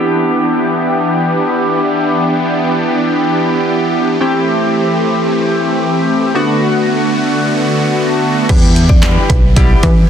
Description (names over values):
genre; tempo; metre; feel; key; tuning
dance-pop; free time; none; none; E minor; A4 = 443 Hz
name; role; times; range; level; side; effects
chorused polysynth; accompaniment; 0.0-9.9 s; G3 to G4; -14 LUFS; left 1 dB; sidechain pumping, low-pass filter
supersaw chords; sustained chords; 0.0-10.1 s; D3 to G4; -16 LUFS; right 1 dB; sidechain pumping, low-pass filter
mallet-like synth pluck; melody; 8.5-10.0 s; B4 to D5; -24 LUFS; left 1 dB; chorus, sidechain pumping
plucky analog bass; bass; 8.5-10.1 s; B1 to E3; -12 LUFS; equal; sidechain pumping
punchy analog drum machine; drums; 8.5-10.0 s; crash cymbal, handclaps, hi-hat, kick drum, snare drum; -10 LUFS; equal; none
group handclap; percussion; 9.0-9.2 s; none; -27 LUFS; right 6 dB; none
room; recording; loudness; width
moderate lush hall reverb, RT60 2.6 s; dense, heavily limited modern master; -11 LUFS; side -8 dB against mid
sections
0.0-8.5 A section; 8.5-10.1 B section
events
filter sweep 0.0-8.5; drop 8.5-10.1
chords
0.0 Em7; 4.2 Am7; 6.3 Bm7; 8.5 Em7